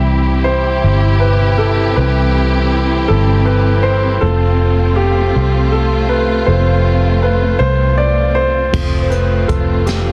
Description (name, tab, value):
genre	six-eight pop ballad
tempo	53 BPM (dotted quarters)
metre	6/8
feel	straight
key	unclear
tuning	A4 = 442 Hz
part	warm concert grand piano	accompaniment	0.0-10.1 s	E3 to E5	-18 LUFS	equal	none
part	warm studio string section	sustained chords	0.0-10.1 s	C3 to G4	-22 LUFS	equal	none
part	vintage muted fingered electric bass	bass	0.0-10.1 s	F1 to C2	-16 LUFS	equal	none
part	jazz brush drum kit	drums	8.7-10.1 s	crash cymbal, hi-hat, kick drum, snare drum	-21 LUFS	equal	none
room	light reverb, small room ambience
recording	dense, heavily limited modern master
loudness	-14 LUFS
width	mono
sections	0.0-8.7 A section; 8.7-10.1 B section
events	grand piano solo 0.0-8.7, 8.7-10.1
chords	0.0 C; 4.2 F